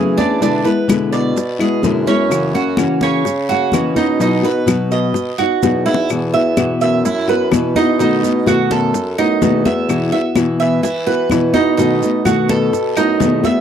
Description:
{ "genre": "latin, Cuban son and guajira", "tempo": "127 BPM", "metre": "4/4", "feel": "straight", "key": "E major", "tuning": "A4 = 441 Hz", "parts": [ { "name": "nylon-string guitar", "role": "accompaniment", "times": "0.0-13.6 s", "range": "B2 to G#4", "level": "-16 LUFS", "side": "left 3 dB", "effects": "none" }, { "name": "Cuban tres", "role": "arpeggios", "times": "0.0-13.6 s", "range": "C#4 to E5", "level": "-18 LUFS", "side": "right 6 dB", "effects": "slapback echo" }, { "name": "clear bassoon", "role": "bass", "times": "0.0-13.6 s", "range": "E2 to E3", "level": "-22 LUFS", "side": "right 1 dB", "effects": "none" }, { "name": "bongos", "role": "percussion", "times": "0.2-13.5 s", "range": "none", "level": "-22 LUFS", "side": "left 8 dB", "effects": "none" }, { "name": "congas", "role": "percussion", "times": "0.2-13.6 s", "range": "none", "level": "-21 LUFS", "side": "left 2 dB", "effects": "none" }, { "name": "guiro", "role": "percussion", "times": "0.2-13.6 s", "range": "none", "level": "-33 LUFS", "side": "left 17 dB", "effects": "none" }, { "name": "maracas", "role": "percussion", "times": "0.2-13.6 s", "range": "none", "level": "-32 LUFS", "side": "right 17 dB", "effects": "none" }, { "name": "claves", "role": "percussion", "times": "0.9-13.2 s", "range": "none", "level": "-29 LUFS", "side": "left 9 dB", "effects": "none" } ], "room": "little or no reverb", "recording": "dry, close 1970s-style studio recording", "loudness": "-13 LUFS", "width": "side -9 dB against mid", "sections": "0.0-6.1 A section; 6.1-13.6 B section", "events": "drum fill 5.6-6.1, 13.4", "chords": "0.4 E7; 2.3 F#7; 4.2 Esus2; 8.0 B7; 9.9 Esus2; 11.8 B7" }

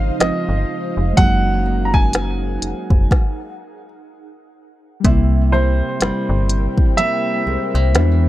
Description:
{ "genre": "contemporary R&B", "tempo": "62 BPM", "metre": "4/4", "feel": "swing 58% on 16ths", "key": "unclear", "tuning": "A4 = 442 Hz", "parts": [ { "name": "warm baby grand piano", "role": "melody", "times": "0.0-8.3 s", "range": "C5 to Bb5", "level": "-22 LUFS", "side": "right 1 dB", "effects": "tape echo" }, { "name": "muted felt-like synth keys", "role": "accompaniment", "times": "0.0-8.3 s", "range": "F3 to F#4", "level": "-24 LUFS", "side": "left 1 dB", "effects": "chorus, tape echo" }, { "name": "ethereal airy pad", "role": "sustained chords", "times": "0.0-8.3 s", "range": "Eb4 to G#5", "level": "-29 LUFS", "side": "left 1 dB", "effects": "ensemble chorus, built-in reverb, phaser" }, { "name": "nylon-string guitar", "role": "arpeggios", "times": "0.0-8.3 s", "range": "C3 to E4", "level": "-25 LUFS", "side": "right 4 dB", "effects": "tape echo" }, { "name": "metallic FM bass", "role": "bass", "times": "0.0-8.3 s", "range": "F1 to E2", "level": "-18 LUFS", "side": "equal", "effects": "none" }, { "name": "organic electronic drum kit", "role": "drums", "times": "0.2-8.2 s", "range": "hi-hat, kick drum, snare drum", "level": "-15 LUFS", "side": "equal", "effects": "none" } ], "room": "little or no reverb", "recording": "echo-heavy mix", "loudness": "-15 LUFS", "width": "side -15 dB against mid", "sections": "0.0-5.0 A section; 5.0-8.3 B section", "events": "stop 3.1-5.0", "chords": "0.0 Dbmaj9; 1.2 Gb69; 3.1 N.C.; 5.0 C7" }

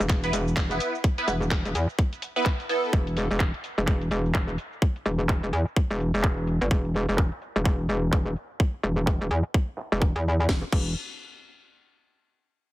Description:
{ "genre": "bass house", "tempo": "127 BPM", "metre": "4/4", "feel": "swing 60% on 16ths", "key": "unclear", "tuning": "A4 = 440 Hz", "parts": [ { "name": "metallic wobble bass", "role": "bass", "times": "0.0-10.9 s", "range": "E1 to E2", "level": "-25 LUFS", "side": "equal", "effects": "chorus, tube saturation, sidechain pumping" }, { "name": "garage drum kit", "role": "drums", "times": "0.0-10.8 s", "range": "cabasa, crash cymbal, handclaps, hi-hat, snare drum", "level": "-33 LUFS", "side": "right 1 dB", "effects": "low-pass filter on hats, small room ambience, low-pass filter on perc, low-pass filter on snare, low-pass filter on cymbals" }, { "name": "electronic kick drum", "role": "drums", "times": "0.1-10.8 s", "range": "none", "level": "-23 LUFS", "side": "equal", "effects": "overdrive, small room ambience" }, { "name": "band-passed chord stab", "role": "stabs", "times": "0.2-2.9 s", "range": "B3 to B4", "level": "-28 LUFS", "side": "right 2 dB", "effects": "phaser, ensemble chorus, sidechain pumping, ping-pong delay" } ], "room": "digital ambience", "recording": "heavily compressed radio sound, multiband compression", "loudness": "-23 LUFS", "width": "side -16 dB against mid", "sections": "0.0-10.5 A section; 10.5-12.4 B section", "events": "filter sweep on drum 0.0-10.5", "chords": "0.0 E5; 10.5 N.C." }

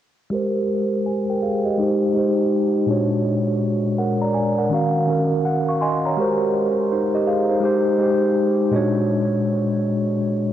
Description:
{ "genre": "hip hop", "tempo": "82 BPM", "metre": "4/4", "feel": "swing 64% on 16ths", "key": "Ab major", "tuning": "A4 = 439 Hz", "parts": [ { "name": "mellow tine electric piano", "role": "solo", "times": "0.3-10.5 s", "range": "Bb2 to Db6", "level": "-18 LUFS", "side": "equal", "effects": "medium stereo tremolo, low-pass filter, diffuse ambient delay" } ], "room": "wet plate reverb, RT60 3.6 s", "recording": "dreamy mix soaked in reverb, cassette tape", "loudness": "-18 LUFS", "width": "side -11 dB against mid", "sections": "0.3-10.5 A section", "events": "filter sweep on tine electric piano 0.3-10.5; tine electric piano fill 5.1-6.2", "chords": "0.3 Abmaj9; 1.8 Abmaj7; 2.9 Bb7alt; 4.7 Ebm9; 6.2 Abmaj9; 7.6 Abmaj7; 8.7 Bb7alt" }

